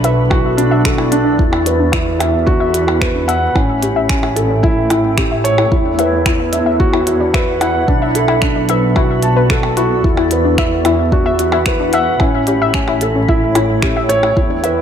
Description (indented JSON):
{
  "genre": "piano and strings electronica",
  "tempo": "111 BPM",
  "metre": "4/4",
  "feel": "straight",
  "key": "E dorian",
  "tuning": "A4 = 440 Hz",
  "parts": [
    { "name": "granular cloud pad", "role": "sustained chords", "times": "0.0-14.8 s", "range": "A3 to B5", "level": "-21 LUFS", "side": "equal", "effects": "built-in reverb, sidechain pumping" },
    { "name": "warbly dusty pluck", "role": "arpeggios", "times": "0.0-14.7 s", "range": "C#4 to E5", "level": "-20 LUFS", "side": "left 5 dB", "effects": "chorus, cassette tape, sidechain pumping, ping-pong delay" },
    { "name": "felt-muted upright piano", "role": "riff", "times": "0.0-14.8 s", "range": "C#4 to A5", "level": "-16 LUFS", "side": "right 1 dB", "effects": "ping-pong delay" },
    { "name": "warm chamber double bass section", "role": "bass", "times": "0.0-14.8 s", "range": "A1 to E2", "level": "-19 LUFS", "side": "equal", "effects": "sidechain pumping" },
    { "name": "minimal click drum kit", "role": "drums", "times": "0.0-14.7 s", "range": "finger snaps, hi-hat, percussion blips", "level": "-22 LUFS", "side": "right 1 dB", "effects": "none" },
    { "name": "electronic kick drum", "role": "drums", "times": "0.3-14.5 s", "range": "none", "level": "-17 LUFS", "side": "equal", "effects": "none" }
  ],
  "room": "light reverb, digital ambience",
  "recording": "none",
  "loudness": "-12 LUFS",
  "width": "side -8 dB against mid",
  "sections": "0.0-14.8 A section",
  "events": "none",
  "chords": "0.0 Bm7; 1.4 Esus2; 3.6 A7; 5.7 Esus2; 7.9 Bm7; 10.0 Esus2; 12.2 A7"
}